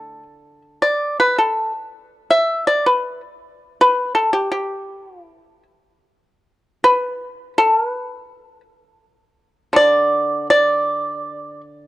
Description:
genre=chinese traditional, Chinese solo plucked strings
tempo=75-85 BPM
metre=2/4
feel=rubato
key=unclear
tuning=A4 = 440 Hz
part: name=pipa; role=solo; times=0.0-11.9 s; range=D3 to E5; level=-15 LUFS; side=equal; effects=none
room=small room reverb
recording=dry, close 1970s-style studio recording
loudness=-15 LUFS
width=side -16 dB against mid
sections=0.0-6.1 A section; 6.1-11.9 B section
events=none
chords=none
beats=| 0.03 0.80 | 1.55 2.29 | 3.04 3.78 | 4.50 5.26 | 6.06 6.83 | 7.57 8.28 | 9.00 9.75 | 10.49 11.26

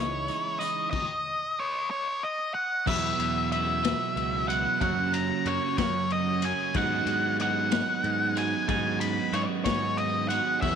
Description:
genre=indie rock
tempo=62 BPM (dotted quarters)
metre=6/8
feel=straight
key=G# minor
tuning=A4 = 439 Hz
part: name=octave-fuzz lead guitar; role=melody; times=0.0-10.8 s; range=C#5 to B5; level=-28 LUFS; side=left 1 dB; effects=distortion, tape echo
part: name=tonewheel organ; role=sustained chords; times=0.0-10.8 s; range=C#3 to D#5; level=-41 LUFS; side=equal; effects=slow rotary speaker, overdrive
part: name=twelve-string electric guitar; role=riff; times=0.0-10.8 s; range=E2 to G#4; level=-31 LUFS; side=right 12 dB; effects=none
part: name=growling picked electric bass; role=bass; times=0.0-10.8 s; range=C#2 to G#2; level=-33 LUFS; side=left 1 dB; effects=overdrive
part: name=raw garage drum kit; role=drums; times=0.3-10.8 s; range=crash cymbal, hi-hat, kick drum, ride cymbal, snare drum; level=-33 LUFS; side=left 6 dB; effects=none
room=light reverb, studio reverb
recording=1960s-style stereo with parts hard left and right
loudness=-25 LUFS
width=side -7 dB against mid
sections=0.0-2.9 A section; 2.9-10.8 B section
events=none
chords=0.0 C#madd9; 0.9 N.C.; 2.9 Eadd9; 4.8 F#; 6.7 G#m7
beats=| 0.93 1.90 | 2.87 3.84 | 4.81 5.78 | 6.75 7.72 | 8.69 9.66 | 10.63

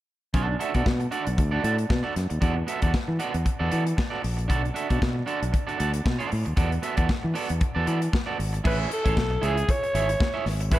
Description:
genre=disco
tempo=116 BPM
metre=4/4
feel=swing 56% on 16ths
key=A major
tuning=A4 = 440 Hz
part: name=electric guitar at the edge of break-up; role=accompaniment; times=0.3-10.8 s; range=B3 to E5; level=-29 LUFS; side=right 5 dB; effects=spring reverb
part: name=overdriven fingered electric bass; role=bass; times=0.3-10.8 s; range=G#1 to E3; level=-26 LUFS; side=equal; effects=none
part: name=modern studio drum kit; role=drums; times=0.3-10.8 s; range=crash cymbal, hi-hat, kick drum, snare drum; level=-26 LUFS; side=left 1 dB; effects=none
part: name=growling alto saxophone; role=melody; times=8.7-10.8 s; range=G#4 to C#5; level=-27 LUFS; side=equal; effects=none
room=small room ambience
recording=none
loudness=-23 LUFS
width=side -15 dB against mid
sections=0.3-8.6 A section; 8.6-10.8 B section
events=none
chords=0.3 Bm7; 2.4 E9sus4; 4.5 Bm7; 6.6 E9sus4; 8.6 Amaj7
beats=| 0.34 0.86 1.38 1.90 | 2.42 2.94 3.46 3.98 | 4.50 5.02 5.54 6.06 | 6.58 7.09 7.61 8.13 | 8.65 9.17 9.68 10.20 | 10.72

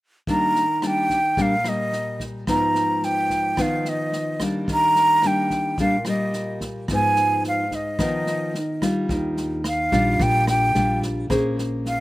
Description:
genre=bossa nova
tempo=109 BPM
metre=4/4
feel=straight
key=Eb major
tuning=A4 = 440 Hz
part: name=breathy jazz flute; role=melody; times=0.3-12.0 s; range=Eb5 to Bb5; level=-21 LUFS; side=equal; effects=none
part: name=nylon-string guitar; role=accompaniment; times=0.3-12.0 s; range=Ab2 to C5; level=-24 LUFS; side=left 1 dB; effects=none
part: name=swinging big-band drum kit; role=drums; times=0.3-11.9 s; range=kick drum, rim click, snare drum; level=-30 LUFS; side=equal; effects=none
part: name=upright bass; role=bass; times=9.1-12.0 s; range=Bb1 to Eb2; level=-26 LUFS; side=equal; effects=none
room=little or no reverb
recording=recorded outdoors, with no room sound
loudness=-19 LUFS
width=side -17 dB against mid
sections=0.3-9.1 A section; 9.1-12.0 B section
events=none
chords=0.3 Ebmaj7; 2.5 Abm6; 4.7 Ebmaj7; 6.9 Abm6; 9.1 Ebmaj9; 11.3 Bbm9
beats=| 0.27 0.82 1.38 1.93 | 2.48 3.03 3.58 4.13 | 4.68 5.24 5.79 6.34 | 6.89 7.44 7.99 8.54 | 9.10 9.65 10.20 10.75 | 11.30 11.85

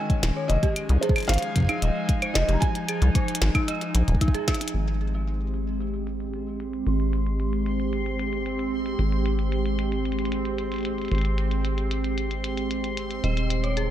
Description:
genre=IDM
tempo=113 BPM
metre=4/4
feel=straight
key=Ab major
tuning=A4 = 440 Hz
part: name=felt-muted upright piano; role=melody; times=0.0-4.2 s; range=C5 to Bb5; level=-31 LUFS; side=equal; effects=tape echo
part: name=warbly tape-like pad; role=sustained chords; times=0.0-13.9 s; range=Db3 to Ab5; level=-30 LUFS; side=equal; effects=chorus, built-in reverb
part: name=dark detuned synth bell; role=arpeggios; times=0.0-4.7, 13.2-13.9 s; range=Eb4 to Eb5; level=-32 LUFS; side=right 1 dB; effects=chorus, phaser, tape echo
part: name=electronic kick drum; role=drums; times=0.1-4.6 s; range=none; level=-23 LUFS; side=equal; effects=none
part: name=glitchy drum kit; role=drums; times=0.1-13.9 s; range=claves, hi-hat, snare drum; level=-31 LUFS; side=left 1 dB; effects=low-pass filter on snare, low-pass filter on hats, low-pass filter on perc, low-pass filter on room
part: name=deep acid bass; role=bass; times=0.2-13.9 s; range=Eb1 to C2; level=-26 LUFS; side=equal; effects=none
part: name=bubbling stepped-filter texture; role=texture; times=4.7-13.9 s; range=C4 to C6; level=-34 LUFS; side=right 2 dB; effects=chorus, built-in reverb
room=light reverb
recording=none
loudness=-23 LUFS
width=side -11 dB against mid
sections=0.0-4.7 A section; 4.7-13.9 B section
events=drum fill 4.5; filter sweep on ambient pad 4.7-13.9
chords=0.5 Fm7; 4.7 Abmaj7; 13.2 Eb7sus4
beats=| 0.50 1.03 1.56 2.09 | 2.62 3.15 3.68 4.21 | 4.74 5.28 5.81 6.34 | 6.87 7.40 7.93 8.46 | 8.99 9.52 10.05 10.59 | 11.12 11.65 12.18 12.71 | 13.24 13.77

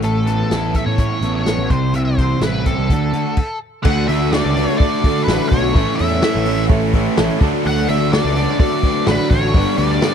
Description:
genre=classic rock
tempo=126 BPM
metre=4/4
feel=straight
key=unclear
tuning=A4 = 440 Hz
part: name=octave-fuzz lead guitar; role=melody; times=0.0-10.1 s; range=A4 to F#5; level=-23 LUFS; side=equal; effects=wah, distortion
part: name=biting overdriven guitar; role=riff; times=0.0-10.1 s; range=G2 to C#5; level=-23 LUFS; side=left 16 dB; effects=none
part: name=crunchy overdriven guitar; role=riff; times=0.0-10.1 s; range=A2 to B4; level=-22 LUFS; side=right 12 dB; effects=none
part: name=fuzz picked electric bass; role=bass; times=0.0-10.0 s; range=G1 to D3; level=-20 LUFS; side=equal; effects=overdrive
part: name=vintage drum kit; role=drums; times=0.0-10.1 s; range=crash cymbal, hi-hat, kick drum, snare drum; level=-18 LUFS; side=equal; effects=none
part: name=bright upright piano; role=accompaniment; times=3.8-10.1 s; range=E4 to D5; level=-27 LUFS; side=right 13 dB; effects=none
part: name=picked twelve-string acoustic guitar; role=accompaniment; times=3.8-10.1 s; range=G2 to G4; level=-29 LUFS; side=left 11 dB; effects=none
part: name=biting overdriven guitar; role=riff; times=3.8-10.1 s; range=G2 to F#4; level=-24 LUFS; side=equal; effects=none
room=little or no reverb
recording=dry, close 1970s-style studio recording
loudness=-14 LUFS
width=side -8 dB against mid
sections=0.0-3.9 A section; 3.9-10.1 B section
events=stop 3.4-3.9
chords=0.0 Aadd9; 1.7 C; 2.9 D; 5.8 A; 7.4 D; 9.5 G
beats=| 0.04 0.52 0.99 1.47 | 1.95 2.42 2.90 3.38 | 3.85 4.33 4.80 5.28 | 5.75 6.23 6.70 7.17 | 7.65 8.12 8.60 9.07 | 9.54 10.02

